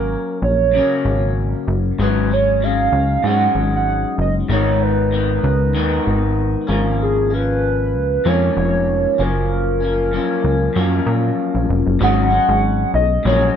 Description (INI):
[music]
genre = indie pop, bedroom pop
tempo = 96 BPM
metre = 4/4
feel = swing 55% on 16ths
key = unclear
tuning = A4 = 439 Hz
[part]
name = warbly nostalgic lead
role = melody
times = 0.0-13.5 s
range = G#4 to F#5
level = -19 LUFS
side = right 2 dB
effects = tremolo, wide subtle chorus
[part]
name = electric guitar through a small old amp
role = accompaniment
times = 0.0-13.6 s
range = F#2 to D#4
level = -20 LUFS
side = left 4 dB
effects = lush chorus, warbly pitch drift
[part]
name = plucky analog bass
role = bass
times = 0.0-13.5 s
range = E#1 to A#2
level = -19 LUFS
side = equal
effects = none
[sound]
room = light reverb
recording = none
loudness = -15 LUFS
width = side -8 dB against mid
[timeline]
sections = 0.0-12.0 A section; 12.0-13.6 B section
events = none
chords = 0.0 F#/G#; 2.0 C#sus4/G#; 4.5 G#m; 6.7 A#m7/G#; 9.2 F#maj7; 12.0 C#sus4/G#